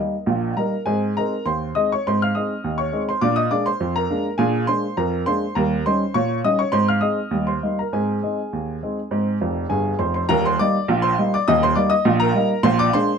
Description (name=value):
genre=ragtime piano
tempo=102 BPM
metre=2/4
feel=straight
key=Ab major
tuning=A4 = 440 Hz
part: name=clear upright piano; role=solo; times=0.0-13.2 s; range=Eb1 to F6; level=-18 LUFS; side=equal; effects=none
room=light reverb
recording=dark, warm production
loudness=-18 LUFS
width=side -6 dB against mid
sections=0.9-10.3 A section; 10.3-13.2 B section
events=upright piano fill 9.4-10.3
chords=0.0 Eb; 0.9 Ab; 3.2 Bb7; 5.6 Eb7; 6.7 Ab; 7.3 Eb; 7.9 Ab; 10.3 Eb; 12.6 Bb7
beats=0.27 | 0.86 1.46 | 2.04 2.63 | 3.22 3.80 | 4.39 4.98 | 5.56 6.15 | 6.73 7.32 | 7.92 8.51 | 9.10 9.70 | 10.29 10.88 | 11.47 12.06 | 12.64